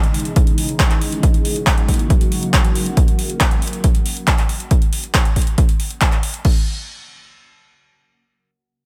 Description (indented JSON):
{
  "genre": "uplifting trance",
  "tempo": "138 BPM",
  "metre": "4/4",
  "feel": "straight",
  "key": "unclear",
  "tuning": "A4 = 441 Hz",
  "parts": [
    { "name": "shimmering ambient pad", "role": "sustained chords", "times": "0.0-3.0 s", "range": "C#3 to F#4", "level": "-27 LUFS", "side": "equal", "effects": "chorus, built-in reverb, phaser, sidechain pumping" },
    { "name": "big-room dance drum kit", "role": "drums", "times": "0.0-6.5 s", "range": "crash cymbal, handclaps, hi-hat", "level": "-25 LUFS", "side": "equal", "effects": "none" },
    { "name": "electronic kick drum", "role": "drums", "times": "0.4-6.5 s", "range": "none", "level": "-18 LUFS", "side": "equal", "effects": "none" }
  ],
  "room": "light reverb",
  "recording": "none",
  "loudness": "-17 LUFS",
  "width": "mono",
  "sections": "0.0-6.4 A section; 6.4-8.9 B section",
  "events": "none",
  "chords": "0.0 C#madd9; 1.2 F#; 3.0 N.C."
}